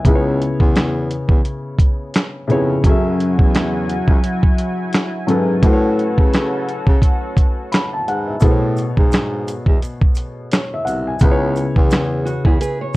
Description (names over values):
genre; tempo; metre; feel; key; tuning
lo-fi hip hop; 86 BPM; 4/4; swing 58% on 16ths; A major; A4 = 435 Hz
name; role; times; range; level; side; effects
felt-muted upright piano; accompaniment; 0.0-13.0 s; B2 to B5; -20 LUFS; left 1 dB; cassette tape, low-pass filter
dusty soul sampler-style drum kit; drums; 0.0-13.0 s; handclaps, hi-hat, kick drum, snare drum; -14 LUFS; equal; none
dark baritone saxophone; bass; 0.1-12.6 s; C2 to C#3; -22 LUFS; equal; none
lush unison pad; sustained chords; 2.8-8.4 s; F#3 to G#5; -26 LUFS; equal; chorus, low-pass filter
maracas; percussion; 8.4-13.0 s; none; -42 LUFS; right 5 dB; none
nylon-string guitar; second line; 12.3-12.9 s; E4 to C#5; -22 LUFS; right 3 dB; low-pass filter
room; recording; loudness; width
light reverb; cassette tape; -14 LUFS; side -19 dB against mid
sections
0.0-8.4 A section; 8.4-13.0 A section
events
none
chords
0.0 C#m7; 2.8 F#m9; 5.6 A69; 8.4 Amaj9; 11.2 C#m7